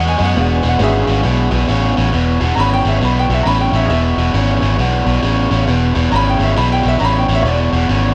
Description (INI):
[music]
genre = electric blues shuffle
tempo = 135 BPM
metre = 4/4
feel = swing 63% on 8ths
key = E mixolydian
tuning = A4 = 438 Hz
[part]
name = warm concert grand piano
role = accompaniment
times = 0.0-8.1 s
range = G#3 to B5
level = -21 LUFS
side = equal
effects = none
[part]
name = overdriven electric guitar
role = riff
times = 0.0-8.1 s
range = E2 to G#3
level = -18 LUFS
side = equal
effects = spring reverb
[part]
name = vintage muted fingered electric bass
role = bass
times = 0.0-8.1 s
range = E1 to F#2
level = -18 LUFS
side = equal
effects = none
[sound]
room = light reverb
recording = none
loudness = -15 LUFS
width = mono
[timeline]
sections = 0.0-2.1 A section; 2.1-8.1 A section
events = none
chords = 0.4 E7; 2.1 E